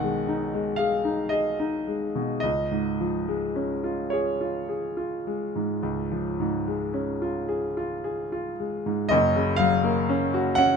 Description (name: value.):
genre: classical, romantic nocturne for solo piano.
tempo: 35-42 BPM (dotted quarters).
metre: 12/8.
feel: rubato.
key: unclear.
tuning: A4 = 440 Hz.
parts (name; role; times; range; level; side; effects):
clear grand piano; solo; 0.0-10.8 s; F#1 to G#5; -24 LUFS; equal; none.
room: light reverb.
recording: none.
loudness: -24 LUFS.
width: side -6 dB against mid.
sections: 0.0-9.1 A section; 9.1-10.8 A section.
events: none.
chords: 0.0 G#m/B; 2.4 C#; 9.1 F#.